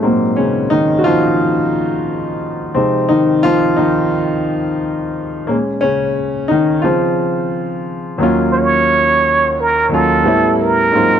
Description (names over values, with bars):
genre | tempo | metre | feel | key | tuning
R&B | 88 BPM | 4/4 | swing 62% on 16ths | Eb dorian | A4 = 437 Hz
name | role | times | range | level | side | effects
warm grand piano | accompaniment | 0.0-11.2 s | Eb2 to Gb4 | -14 LUFS | left 1 dB | none
trumpet with plunger mute | melody | 8.5-11.2 s | A4 to Db5 | -12 LUFS | right 3 dB | none
room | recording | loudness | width
light reverb | none | -13 LUFS | side -8 dB against mid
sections
0.0-8.2 A section; 8.2-11.2 B section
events
grand piano solo 0.0-8.2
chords
0.0 Ab13; 2.7 Fm7; 5.5 Bbm7 (rootless); 6.8 Dbmaj7; 8.2 Ebm9; 10.2 A9